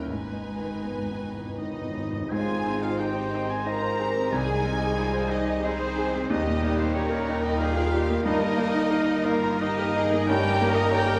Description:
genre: classical, romantic movement for piano and orchestra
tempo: 79-96 BPM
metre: 3/4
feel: rubato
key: Ab major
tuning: A4 = 440 Hz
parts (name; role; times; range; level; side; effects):
- clear concert grand piano; melody; 0.0-11.2 s; C2 to Bb5; -30 LUFS; equal; none
- rich studio violin section; melody; 0.0-11.2 s; Bb4 to Bb5; -40 LUFS; equal; none
- warm studio violin section; second line; 0.0-11.2 s; G3 to B4; -38 LUFS; equal; none
- warm studio viola section; accompaniment; 0.0-11.2 s; Bb3 to B4; -39 LUFS; equal; none
- dark studio cello section; bass; 0.0-11.2 s; G#3 to Bb4; -36 LUFS; equal; none
- warm studio double bass section; bass; 0.0-11.2 s; G1 to Eb2; -35 LUFS; equal; none
- timpani; percussion; 0.1-3.3 s; G#2; -41 LUFS; equal; none
- bright concert flute; second line; 1.6-11.2 s; Bb4 to Bb5; -37 LUFS; equal; none
- bright oboe; second line; 1.6-11.2 s; Bb4 to Bb5; -39 LUFS; equal; none
- dark French horn section; sustained chords; 1.6-11.2 s; Bb3 to Bb4; -35 LUFS; equal; none
- warm clarinet; second line; 2.3-11.1 s; Eb4; -39 LUFS; equal; none
- warm bassoon; accompaniment; 2.3-11.1 s; G3 to C#4; -39 LUFS; equal; none
- clear trombone section; sustained chords; 2.3-11.2 s; Eb3 to Eb4; -40 LUFS; equal; none
- bright trumpet section; stabs; 2.3-11.2 s; G4 to C5; -39 LUFS; equal; none
room: wet recital hall reverb, RT60 1.7 s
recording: none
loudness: -26 LUFS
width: mono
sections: 0.0-2.3 A section; 2.3-11.2 B section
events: timpani fill 0.1-2.3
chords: 0.1 G#m; 2.3 Ab; 4.3 Ab/C; 6.3 Eb; 8.3 Eb/G; 10.3 D#7/G

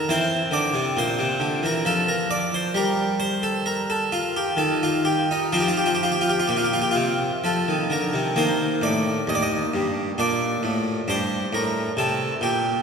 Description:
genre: classical, baroque-style suite movement for harpsichord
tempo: 62-69 BPM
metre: 3/4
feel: rubato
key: unclear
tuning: A4 = 440 Hz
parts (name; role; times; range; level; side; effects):
- harpsichord; solo; 0.0-12.8 s; Eb2 to Eb5; -20 LUFS; equal; none
room: wet church reverb, RT60 3.7 s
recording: minimal, uncompressed stereo recording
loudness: -20 LUFS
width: side -6 dB against mid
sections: 0.0-8.4 A section; 8.4-12.8 B section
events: none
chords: 0.1 C7; 1.9 N.C.; 5.5 Fsus4; 7.4 F; 8.4 Eb; 10.2 Bb; 11.1 Gm

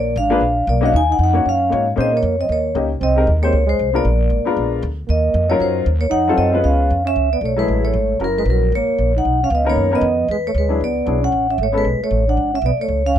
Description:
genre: jazz, small-group swing and bop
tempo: 231 BPM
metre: 4/4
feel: swing 58% on 8ths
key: Bb minor, F# minor from 7.2 s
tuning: A4 = 440 Hz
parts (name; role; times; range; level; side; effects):
- vibraphone with medium mallets; melody; 0.0-13.2 s; A#4 to Ab5; -19 LUFS; left 1 dB; none
- breathy trombone; second line; 0.0-13.2 s; F#3 to Eb4; -23 LUFS; right 7 dB; none
- upright bass; bass; 0.0-13.2 s; F#1 to Bb2; -19 LUFS; equal; none
- warm upright piano; accompaniment; 0.3-11.8 s; D#3 to Eb5; -21 LUFS; left 5 dB; none
room: little or no reverb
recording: close, detailed microphones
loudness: -15 LUFS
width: side -10 dB against mid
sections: 0.0-7.2 A section; 7.2-13.2 B section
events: none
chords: 0.0 Bb7b9; 0.9 Ebm7; 2.0 Bbm11; 2.5 Eb7; 3.0 Abmaj9; 4.0 Bb7b9; 5.1 Ebm9; 6.1 F7b9; 6.6 Db7; 7.2 F#m9; 8.2 F#7; 9.2 Bmaj9; 10.3 E9; 11.3 Amaj9; 12.4 Bm69/G#

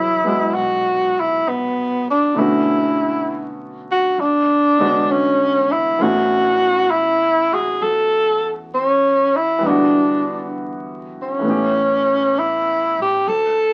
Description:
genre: jazz ballad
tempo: 66 BPM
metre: 4/4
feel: swing 68% on 8ths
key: unclear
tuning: A4 = 439 Hz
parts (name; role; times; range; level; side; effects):
- breathy tenor saxophone; melody; 0.0-13.7 s; B3 to A4; -18 LUFS; equal; none
- clear grand piano; accompaniment; 0.0-13.3 s; D3 to C#5; -24 LUFS; equal; none
- upright bass; bass; 0.0-13.7 s; A1 to A2; -42 LUFS; equal; none
room: moderate studio ambience, RT60 0.5 s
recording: very old 78 rpm record, vinyl crackle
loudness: -18 LUFS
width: mono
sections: 0.0-13.7 A section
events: none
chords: 0.0 E69; 2.4 Bm9; 4.2 E13; 6.0 A; 9.6 Em7; 11.4 A7

